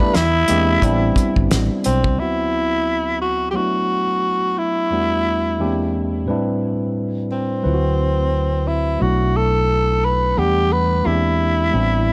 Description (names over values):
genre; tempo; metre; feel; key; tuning
R&B, neo-soul; 88 BPM; 4/4; swing 59% on 16ths; E minor; A4 = 441 Hz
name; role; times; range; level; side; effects
breathy tenor saxophone; melody; 0.0-12.1 s; C4 to B4; -22 LUFS; equal; none
barky tine electric piano; accompaniment; 0.0-12.1 s; D2 to F#5; -24 LUFS; equal; overdrive
fretless electric bass; bass; 0.0-2.2, 7.6-12.1 s; G1 to E2; -22 LUFS; equal; analog chorus
cloth-damped thuddy drum kit; drums; 0.0-2.2 s; hi-hat, kick drum, snare drum; -22 LUFS; equal; none
room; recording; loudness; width
studio ambience; none; -19 LUFS; mono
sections
0.0-2.2 A section; 2.2-12.1 B section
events
none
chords
0.1 E7alt; 0.8 Am7; 2.2 D13; 3.5 Bm7; 4.9 Em7; 5.6 E7alt; 6.3 Am7; 7.6 D13; 9.0 Bm7; 10.4 Em7; 11.0 E7alt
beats
0.13 0.82 1.50 | 2.18 2.86 3.54 4.22 | 4.91 5.59 6.27 6.95 | 7.63 8.32 9.00 9.68 | 10.36 11.04 11.72